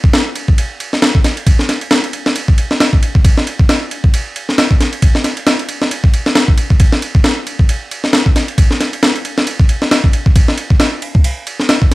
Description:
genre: breakbeat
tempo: 135 BPM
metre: 4/4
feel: swing 57% on 16ths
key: none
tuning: none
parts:
  - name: breakbeat sampler-style drum kit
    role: drums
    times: 0.0-11.9 s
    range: kick drum, ride cymbal, snare drum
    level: -11 LUFS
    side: equal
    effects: none
room: little or no reverb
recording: vinyl crackle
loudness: -11 LUFS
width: side -20 dB against mid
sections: 0.0-11.9 A section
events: none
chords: none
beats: 0.13 0.58 1.02 | 1.47 1.91 2.36 2.80 | 3.25 3.69 4.13 4.58 | 5.02 5.47 5.91 6.36 | 6.80 7.25 7.69 8.13 | 8.58 9.02 9.47 9.91 | 10.36 10.80 11.24 11.69

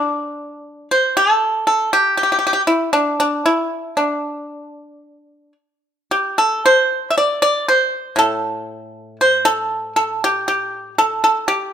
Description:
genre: chinese traditional, Chinese solo plucked strings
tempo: 59 BPM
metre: 2/4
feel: rubato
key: unclear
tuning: A4 = 440 Hz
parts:
  - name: pipa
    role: solo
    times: 0.0-11.7 s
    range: A2 to E5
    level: -15 LUFS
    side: equal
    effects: none
room: light reverb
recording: band playing live in one room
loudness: -15 LUFS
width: side -8 dB against mid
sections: 0.0-11.7 A section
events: none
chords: none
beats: 0.93 | 1.94 2.96 | 3.99 5.04 | 6.11 7.16 | 8.19 9.20 | 10.22 11.22

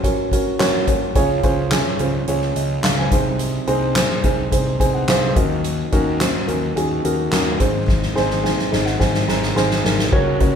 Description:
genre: piano-driven pop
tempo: 107 BPM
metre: 4/4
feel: straight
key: unclear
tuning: A4 = 440 Hz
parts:
  - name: dark upright piano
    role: accompaniment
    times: 0.0-10.6 s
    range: Ab2 to C6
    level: -20 LUFS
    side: right 1 dB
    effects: none
  - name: soft-mallet drum kit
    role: drums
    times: 0.0-10.5 s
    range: crash cymbal, handclaps, hi-hat, kick drum, snare drum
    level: -20 LUFS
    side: left 1 dB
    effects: none
  - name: fuzz picked electric bass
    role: bass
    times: 1.2-10.6 s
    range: Ab1 to Eb2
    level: -24 LUFS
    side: left 1 dB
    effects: overdrive
room: moderate large studio reverb, RT60 1.3 s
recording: band playing live in one room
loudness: -16 LUFS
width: side -7 dB against mid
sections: 0.0-10.1 A section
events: upright piano fill 4.5-5.6, 8.4-10.1; drum fill 7.9-10.1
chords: 0.0 Gb; 1.2 Db; 3.1 Ab/C; 5.4 Ebm7; 7.6 Ab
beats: 0.04 0.60 | 1.16 1.72 2.28 2.84 | 3.40 3.96 4.52 5.08 | 5.64 6.20 6.76 7.33 | 7.88 8.45 9.01 9.57 | 10.13

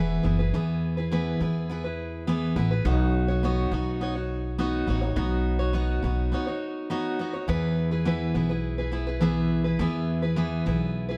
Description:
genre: acoustic pop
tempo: 104 BPM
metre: 4/4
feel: straight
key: E major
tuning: A4 = 440 Hz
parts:
  - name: picked steel-string acoustic guitar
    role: accompaniment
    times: 0.0-11.2 s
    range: E3 to C#5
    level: -28 LUFS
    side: equal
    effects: none
  - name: upright bass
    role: bass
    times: 0.0-11.2 s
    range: E1 to E2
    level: -30 LUFS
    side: equal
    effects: none
room: light reverb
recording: none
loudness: -26 LUFS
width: mono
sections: 0.0-7.5 A section; 7.5-11.2 B section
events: break 6.3-7.5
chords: 0.0 E; 2.9 Badd9; 7.5 E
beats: | 0.53 1.11 1.69 2.27 | 2.85 3.43 4.01 4.59 | 5.17 5.75 6.33 6.91 | 7.49 8.06 8.64 9.22 | 9.79 10.37 10.95

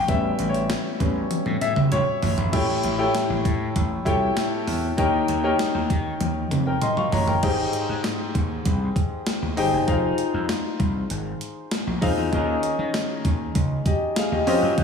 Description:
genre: 1980s-style pop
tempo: 98 BPM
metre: 4/4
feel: straight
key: unclear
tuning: A4 = 440 Hz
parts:
  - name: warm concert grand piano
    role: accompaniment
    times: 0.0-14.8 s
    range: Ab2 to Db6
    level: -23 LUFS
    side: left 2 dB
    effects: slapback echo
  - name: gritty slap bass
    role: bass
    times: 0.0-14.8 s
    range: F1 to Eb3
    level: -27 LUFS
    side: equal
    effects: overdrive
  - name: clean 12-bit digital drum machine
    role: drums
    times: 0.1-14.8 s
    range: crash cymbal, hi-hat, kick drum, snare drum, tambourine, toms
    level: -25 LUFS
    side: equal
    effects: none
room: moderate lush hall reverb, RT60 2.4 s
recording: big arena sound, studio reverb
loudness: -21 LUFS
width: side -6 dB against mid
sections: 0.0-2.5 A section; 2.5-7.4 B section; 7.4-14.8 C section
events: grand piano solo 0.0-2.5; drum fill 1.3-2.5, 6.2-7.4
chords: 0.0 A7; 5.0 Eb7; 7.4 Abmaj7; 9.9 Fm7; 12.3 Eb7sus4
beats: | 0.08 0.69 1.31 1.92 | 2.53 3.14 3.76 4.37 | 4.98 5.59 6.21 6.82 | 7.43 8.04 8.65 9.27 | 9.88 10.49 11.10 11.72 | 12.33 12.94 13.55 14.16 | 14.78

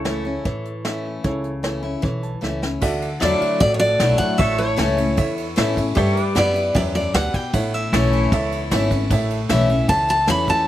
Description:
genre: honky-tonk and classic country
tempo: 153 BPM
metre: 4/4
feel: straight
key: unclear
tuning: A4 = 440 Hz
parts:
  - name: dark upright piano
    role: accompaniment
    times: 0.0-10.5 s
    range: E4 to A5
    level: -28 LUFS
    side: right 4 dB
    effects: slapback echo
  - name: picked steel-string acoustic guitar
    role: accompaniment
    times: 0.0-10.7 s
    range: E2 to E4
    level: -24 LUFS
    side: left 4 dB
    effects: slapback echo
  - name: pedal steel guitar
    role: sustained chords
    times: 0.0-10.7 s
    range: E4 to D5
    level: -29 LUFS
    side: left 1 dB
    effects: wide subtle chorus
  - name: upright bass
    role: bass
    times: 0.0-10.7 s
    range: G#1 to A2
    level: -24 LUFS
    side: equal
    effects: none
  - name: soft brush drum kit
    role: drums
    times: 0.1-10.6 s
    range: crash cymbal, hi-hat, kick drum, ride cymbal, snare drum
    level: -25 LUFS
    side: equal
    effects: none
  - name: picked steel-string acoustic guitar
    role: melody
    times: 3.2-10.7 s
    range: C#5 to B5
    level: -20 LUFS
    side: equal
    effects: none
room: little or no reverb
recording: recorded outdoors, with no room sound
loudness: -17 LUFS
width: side -13 dB against mid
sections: 0.0-2.8 A section; 2.8-10.7 B section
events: upright piano fill 2.0-2.8; drum fill 2.4-2.8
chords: 0.0 A/C#; 2.8 Dadd9; 4.4 A; 6.0 G6; 7.5 A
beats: 0.06 0.45 0.85 | 1.24 1.64 2.03 2.43 | 2.82 3.21 3.61 4.00 | 4.39 4.79 5.18 5.57 | 5.97 6.36 6.75 7.14 | 7.54 7.93 8.32 8.72 | 9.11 9.50 9.89 10.29

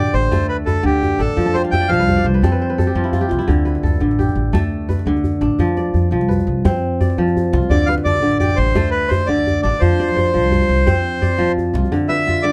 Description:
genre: west african traditional, West African string and xylophone music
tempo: 114 BPM (dotted quarters)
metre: 12/8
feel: straight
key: D dorian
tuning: A4 = 440 Hz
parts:
  - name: accordion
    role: melody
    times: 0.0-2.3, 7.7-12.5 s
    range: G4 to G5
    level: -21 LUFS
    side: equal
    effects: none
  - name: kora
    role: arpeggios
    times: 0.0-12.5 s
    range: D3 to A5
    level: -21 LUFS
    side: equal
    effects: none
  - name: upright bass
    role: bass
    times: 0.0-11.8 s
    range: A1 to F2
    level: -22 LUFS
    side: equal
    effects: none
  - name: djembe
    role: percussion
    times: 0.1-12.4 s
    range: none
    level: -24 LUFS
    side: equal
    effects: none
room: light reverb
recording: dark, warm production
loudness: -17 LUFS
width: mono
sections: 0.0-11.9 A section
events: kora fill 1.5-3.5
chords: 0.0 Dm; 1.4 F5; 3.5 D5; 5.6 F5; 7.7 Dm; 9.8 F5; 11.9 Dm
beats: 0.32 0.84 | 1.37 1.90 2.43 2.96 | 3.48 4.01 4.54 5.07 | 5.59 6.12 6.65 7.18 | 7.71 8.23 8.76 9.29 | 9.81 10.34 10.87 11.39 | 11.92 12.44

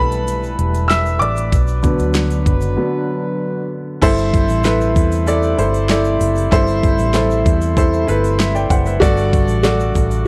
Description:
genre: piano-driven pop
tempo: 96 BPM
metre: 4/4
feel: straight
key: unclear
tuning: A4 = 440 Hz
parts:
  - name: clear baby grand piano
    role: accompaniment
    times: 0.0-10.3 s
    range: G2 to E6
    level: -20 LUFS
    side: equal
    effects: none
  - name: mellow brass ensemble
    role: sustained chords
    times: 0.0-10.3 s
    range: C3 to B4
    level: -30 LUFS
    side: equal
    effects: none
  - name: vintage muted fingered electric bass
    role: bass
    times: 0.0-10.3 s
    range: E1 to E2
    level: -21 LUFS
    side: equal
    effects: none
  - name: pop drum kit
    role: drums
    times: 0.1-10.3 s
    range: crash cymbal, hi-hat, kick drum, snare drum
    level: -20 LUFS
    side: equal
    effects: none
  - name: tube shaker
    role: percussion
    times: 0.1-10.3 s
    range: none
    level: -43 LUFS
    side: equal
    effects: none
room: light reverb, studio ambience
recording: dark, warm production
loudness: -16 LUFS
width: mono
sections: 0.0-4.0 A section; 4.0-10.3 B section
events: grand piano solo 0.0-4.0; break 2.8-4.0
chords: 0.0 Em; 1.5 Bm; 4.0 Am; 9.0 D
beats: 0.27 0.90 | 1.52 2.15 2.77 3.40 | 4.02 4.64 5.27 5.89 | 6.52 7.14 7.77 8.39 | 9.02 9.64 10.27

